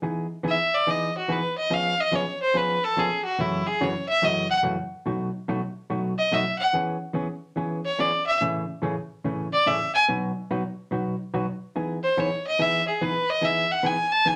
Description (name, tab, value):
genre	country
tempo	144 BPM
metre	4/4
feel	swing 67% on 8ths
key	E major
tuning	A4 = 444 Hz
part	hollow-body jazz guitar	accompaniment	0.0-14.4 s	F#2 to G#4	-30 LUFS	equal	none
part	clear fiddle	melody	0.5-14.4 s	E4 to A5	-25 LUFS	equal	none
room	wet club reverb, RT60 0.6 s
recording	none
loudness	-25 LUFS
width	mono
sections	0.0-14.4 A section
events	fiddle solo 0.0-14.4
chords	0.0 Emaj7; 1.7 C#7/E#; 3.4 F#m7; 5.1 B7; 6.7 E6; 8.4 Amaj7; 10.1 B; 11.7 Emaj7